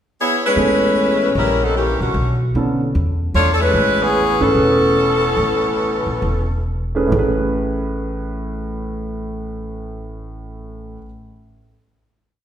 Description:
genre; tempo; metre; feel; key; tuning
jazz, big band swing; 128-151 BPM; 4/4; swing 65% on 8ths; A major; A4 = 439 Hz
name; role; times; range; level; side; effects
clear saxophone section; melody; 0.2-6.7 s; D3 to C#5; -16 LUFS; left 1 dB; none
warm grand piano; accompaniment; 0.6-11.1 s; A2 to B4; -21 LUFS; right 2 dB; none
upright bass; bass; 0.6-11.0 s; E1 to B2; -22 LUFS; equal; none
room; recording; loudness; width
wet recital hall reverb, RT60 1.5 s; recorded in a church or concert hall; -15 LUFS; side -9 dB against mid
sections
0.0-0.6 pickup bar; 0.6-7.1 A section; 7.1-10.9 final chord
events
slowing down 3.7-7.1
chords
0.0 G#madd11; 0.6 Amaj9; 1.4 A#dim7; 2.2 Bm9; 2.9 N.C.; 3.7 Aadd9; 7.1 Amaj9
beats
0.17 | 0.56 0.96 1.36 1.76 | 2.15 2.55 2.95 3.35 | 3.74 4.14 4.54 4.95 | 5.36 5.79 6.22 6.66 | 7.12 7.59 8.06 8.53 | 8.99 9.46 9.93 10.40

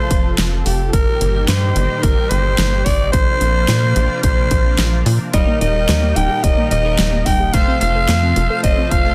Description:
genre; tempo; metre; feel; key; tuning
synthwave; 109 BPM; 4/4; straight; unclear; A4 = 436 Hz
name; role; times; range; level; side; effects
raspy alto saxophone; melody; 0.0-9.1 s; G4 to G5; -22 LUFS; equal; digital delay
analog string pad; sustained chords; 0.0-9.1 s; Bb2 to A4; -27 LUFS; equal; ensemble chorus, sidechain pumping
tight sequencer bass; bass; 0.1-9.1 s; Eb1 to Bb2; -20 LUFS; equal; sidechain pumping
electronic kick drum; drums; 0.1-9.0 s; none; -19 LUFS; equal; studio reverb
pop drum kit; drums; 0.1-9.0 s; hi-hat, snare drum; -24 LUFS; equal; studio reverb
warbly dusty pluck; arpeggios; 5.3-9.1 s; G3 to A4; -28 LUFS; equal; chorus, digital delay
chorused polysynth; stabs; 5.3-9.1 s; G3 to C5; -28 LUFS; equal; digital delay
room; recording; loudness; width
light reverb; dense, heavily limited modern master; -16 LUFS; mono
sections
0.0-9.1 A section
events
none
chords
0.0 F; 0.9 Eb/G; 3.1 Bbadd9; 5.3 Eb; 7.5 F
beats
0.38 | 0.93 1.48 2.04 2.58 | 3.14 3.69 4.24 4.79 | 5.34 5.89 6.44 6.99 | 7.54 8.09 8.64

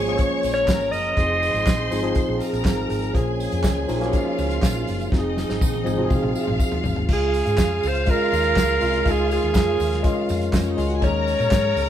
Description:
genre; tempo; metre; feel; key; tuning
disco; 122 BPM; 4/4; straight; unclear; A4 = 440 Hz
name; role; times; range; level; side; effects
breathy alto saxophone; melody; 0.0-2.4, 7.1-11.9 s; Ab4 to Eb5; -22 LUFS; right 2 dB; none
clear studio string section; second line; 0.0-11.9 s; C4 to Db6; -29 LUFS; left 1 dB; none
tine electric piano; accompaniment; 0.0-11.9 s; Eb3 to Ab4; -26 LUFS; left 2 dB; none
mellow French horn section; sustained chords; 0.0-11.9 s; Db3 to Bb4; -30 LUFS; right 3 dB; none
hollow-body short-scale fingered electric bass; bass; 0.0-11.9 s; F1 to Bb2; -26 LUFS; equal; none
warm soul drum kit; drums; 0.1-11.9 s; crash cymbal, handclaps, hi-hat, kick drum, snare drum, toms; -23 LUFS; equal; none
tambourine; percussion; 0.2-11.9 s; none; -41 LUFS; right 3 dB; none
room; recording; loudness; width
light reverb; band playing live in one room; -19 LUFS; side -10 dB against mid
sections
0.0-7.1 A section; 7.1-11.9 B section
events
drum fill 5.1-7.1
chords
0.0 Bbm7; 1.2 Fm7; 3.1 Bbm7; 5.1 Fm7; 7.1 Eb7sus4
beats
0.19 0.69 | 1.18 1.67 2.16 2.65 | 3.15 3.64 4.13 4.63 | 5.12 5.61 6.10 6.60 | 7.09 7.58 8.07 8.57 | 9.06 9.55 10.04 10.54 | 11.03 11.52

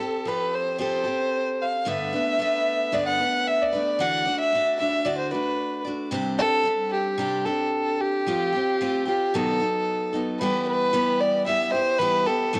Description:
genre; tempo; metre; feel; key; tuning
rock; 112 BPM; 4/4; straight; G major; A4 = 440 Hz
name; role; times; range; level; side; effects
dark fiddle; melody; 0.0-12.6 s; G4 to F#5; -25 LUFS; equal; plate reverb
picked steel-string acoustic guitar; accompaniment; 0.0-12.6 s; G2 to D5; -30 LUFS; equal; plate reverb
room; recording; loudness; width
moderate small room reverb, RT60 0.5 s; home recording on cassette; -24 LUFS; mono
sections
0.0-10.4 A section; 10.4-12.6 B section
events
none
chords
0.0 Fadd9; 1.9 Gadd9; 4.0 Dadd9; 6.1 Csus2; 8.3 Fadd9; 9.3 B7; 10.4 Em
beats
0.25 0.79 1.32 | 1.86 2.39 2.93 3.46 | 4.00 4.53 5.07 5.60 | 6.13 6.67 7.20 7.74 | 8.27 8.80 9.34 9.87 | 10.40 10.93 11.46 12.00 | 12.53

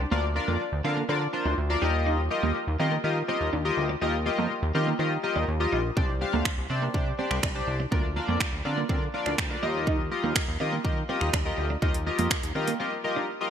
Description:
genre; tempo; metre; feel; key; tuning
dance-pop; 123 BPM; 4/4; straight; unclear; A4 = 440 Hz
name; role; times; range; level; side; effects
twelve-string electric guitar; riff; 0.0-13.2 s; Bb3 to Eb4; -34 LUFS; right 4 dB; analog chorus
chorused synth bass; bass; 0.0-12.7 s; Bb1 to Eb3; -29 LUFS; equal; sidechain pumping
chorused polysynth; accompaniment; 0.1-13.5 s; D4 to F5; -28 LUFS; left 2 dB; sidechain pumping
pop drum kit; drums; 6.0-12.8 s; finger snaps, hi-hat, kick drum; -28 LUFS; right 1 dB; gated reverb
room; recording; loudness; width
light reverb; bright 1980s-style digital production; -24 LUFS; side -8 dB against mid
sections
0.0-13.5 A section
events
break 12.8-13.5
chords
0.1 Bb/D; 1.8 Ebadd9; 6.0 Csus2; 7.9 Bb/D; 9.6 Ebadd9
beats
| 0.11 0.60 1.09 1.58 | 2.06 2.55 3.04 3.53 | 4.02 4.50 4.99 5.48 | 5.97 6.46 6.94 7.43 | 7.92 8.41 8.89 9.38 | 9.87 10.36 10.85 11.33 | 11.82 12.31 12.80 13.29

